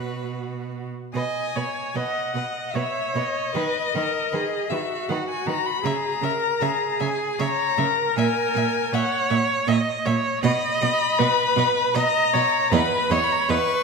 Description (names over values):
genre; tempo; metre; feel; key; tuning
classical, slow romantic movement for string quartet; 78 BPM; 3/4; uneven beats, rubato; B major; A4 = 440 Hz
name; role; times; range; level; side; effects
rich violin; melody; 0.0-13.8 s; F#4 to C#6; -25 LUFS; left 8 dB; none
clear violin; second line; 0.0-13.6 s; B4 to E5; -34 LUFS; left 4 dB; none
clear viola; accompaniment; 0.0-13.8 s; F#4 to D#5; -25 LUFS; right 3 dB; none
clear cello; bass; 0.0-13.6 s; E2 to D#3; -26 LUFS; right 6 dB; none
room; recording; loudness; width
moderate concert hall reverb, RT60 1.6 s; minimal, uncompressed stereo recording; -20 LUFS; side -4 dB against mid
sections
0.0-1.1 A section; 1.1-13.8 B section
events
none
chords
0.0 B5; 3.5 B/D#; 5.8 C#m; 8.2 A#m7; 10.4 B; 12.7 C#m7